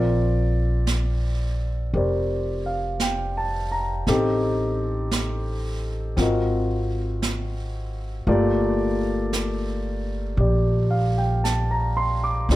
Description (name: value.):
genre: jazz ballad.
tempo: 57 BPM.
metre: 4/4.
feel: swing 67% on 8ths.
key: unclear.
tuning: A4 = 440 Hz.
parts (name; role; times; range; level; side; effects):
warm baby grand piano; accompaniment; 0.0-12.6 s; A3 to D6; -25 LUFS; left 1 dB; none.
upright bass; bass; 0.0-12.6 s; F1 to D2; -24 LUFS; equal; none.
jazz brush drum kit; drums; 0.9-12.6 s; brushed snare drum, hi-hat, snare drum; -31 LUFS; right 4 dB; none.
room: light reverb.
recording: none.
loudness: -21 LUFS.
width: side -16 dB against mid.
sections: 0.0-12.6 A section.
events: none.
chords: 0.0 Bbadd9; 4.1 Am7b5; 6.2 Ab13; 8.3 Gm9.